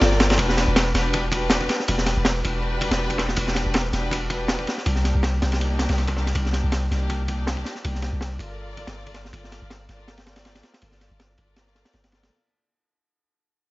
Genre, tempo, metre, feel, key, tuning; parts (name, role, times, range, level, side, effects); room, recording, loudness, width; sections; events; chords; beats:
drum and bass, jungle; 161 BPM; 4/4; swing 55% on 16ths; A4 = 440 Hz
rich studio string section; sustained chords; 0.0-12.3 s; Bb3 to D5; -28 LUFS; left 1 dB; vintage 12-bit sampler grit
long sustained 808-style bass; bass; 0.0-12.3 s; E1 to C2; -24 LUFS; equal
breakbeat sampler-style drum kit; drums; 0.0-12.2 s; hi-hat, snare drum; -33 LUFS; equal
crunchy breakbeat drum kit; drums; 0.0-12.3 s; kick drum, ride cymbal, snare drum; -25 LUFS; equal; high-pass filter on kick, high-pass filter on cymbals, high-pass filter on snare, high-pass filter on room
small room ambience; vinyl crackle, nothing above 7.8 kHz; -20 LUFS; side -19 dB against mid
0.0-12.3 A section
fade-out 0.4-12.3
0.4 Em7; 4.9 Cm7; 8.6 Gm7
0.01 | 0.39 0.76 1.13 1.50 | 1.88 2.25 2.62 3.00 | 3.37 3.74 4.11 4.49 | 4.86 5.23 5.60 5.98 | 6.35 6.72 7.09 7.47 | 7.84 8.21 8.59 8.96 | 9.33 9.70 10.08 10.45 | 10.82 11.19 11.57 11.94